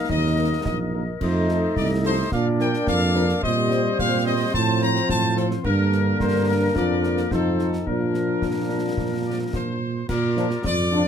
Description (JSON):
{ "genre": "military-style march for wind band", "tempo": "108 BPM", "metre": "2/4", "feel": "straight", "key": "Bb major", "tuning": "A4 = 444 Hz", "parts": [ { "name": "clear trumpet section", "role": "melody", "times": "0.0-11.1 s", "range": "A4 to Bb5", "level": "-27 LUFS", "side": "left 2 dB", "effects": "none" }, { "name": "mellow woodwind section", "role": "second line", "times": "0.0-11.1 s", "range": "D4 to Eb5", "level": "-29 LUFS", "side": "left 3 dB", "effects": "none" }, { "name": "warm trombone section", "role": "sustained chords", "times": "0.0-11.0 s", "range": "D3 to Eb4", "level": "-27 LUFS", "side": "left 1 dB", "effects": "none" }, { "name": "mellow tuba", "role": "bass", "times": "0.1-11.1 s", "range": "Bb1 to Bb2", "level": "-24 LUFS", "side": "right 4 dB", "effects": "none" }, { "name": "concert snare drum, concert bass drum and clash cymbals", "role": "drums", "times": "0.1-10.9 s", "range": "none", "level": "-32 LUFS", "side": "left 1 dB", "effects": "none" }, { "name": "mellow French horn section", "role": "accompaniment", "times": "0.4-11.0 s", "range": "F3 to C5", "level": "-26 LUFS", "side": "left 4 dB", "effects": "none" } ], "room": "light reverb", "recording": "close, detailed microphones", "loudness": "-20 LUFS", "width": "side -8 dB against mid", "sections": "0.0-10.1 A section", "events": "none", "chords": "0.0 Eb5; 1.2 F7; 2.3 Bb; 3.4 Cm7/Bb; 4.5 F/A; 5.6 Gm; 6.8 Bb/F; 7.3 F7; 7.9 Bb" }